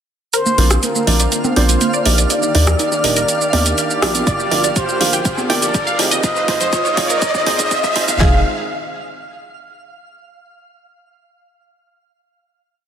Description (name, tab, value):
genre	progressive house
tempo	122 BPM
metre	4/4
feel	straight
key	F dorian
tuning	A4 = 441 Hz
part	expressive portamento lead	melody	0.3-8.4 s	Bb4 to F5	-21 LUFS	equal	lush chorus, digital delay
part	lush unison pad	sustained chords	0.3-8.4 s	D3 to D5	-26 LUFS	left 1 dB	chorus, sidechain pumping
part	wide unison pluck	arpeggios	0.3-8.4 s	Bb3 to G5	-22 LUFS	right 1 dB	phaser, sidechain pumping, digital delay
part	pop drum kit	drums	0.3-8.2 s	hi-hat, rim click, shaker	-19 LUFS	right 2 dB	overdrive, high-pass filter on hats, high-pass filter on perc, high-pass filter on snare, high-pass filter on room
part	riser	sound effects	3.3-8.2 s	none	-24 LUFS	right 1 dB	none
part	twinkling granular texture	texture	1.0-8.2 s	F5	-29 LUFS	right 2 dB	built-in reverb, sidechain pumping
part	felt-muted upright piano	stabs	0.6-8.4 s	Bb3 to F5	-22 LUFS	right 4 dB	sidechain pumping, digital delay
part	round analog bass	bass	0.6-8.4 s	Eb1 to F2	-18 LUFS	equal	sidechain pumping
part	congas	percussion	1.1-8.2 s	none	-24 LUFS	left 1 dB	sidechain pumping on perc
part	pop drum kit	drums	4.3-8.3 s	handclaps, kick drum, snare drum	-18 LUFS	equal	none
room	moderate lush hall reverb, RT60 1.8 s, digital ambience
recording	dense, heavily limited modern master, high-pass filter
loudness	-13 LUFS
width	side -8 dB against mid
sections	0.3-8.2 build; 8.2-10.2 final chord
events	build-up 0.3-8.2; filter sweep on synth pluck 0.3-8.2; riser 3.3-8.2; drum fill 4.3-8.2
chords	0.3 Bbadd9; 2.3 Ebmaj7; 4.3 Gm7; 6.2 Fm7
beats	| 0.34 0.83 1.32 1.81 | 2.30 2.79 3.29 3.78 | 4.27 4.76 5.25 5.75 | 6.24 6.73 7.22 7.71 | 8.20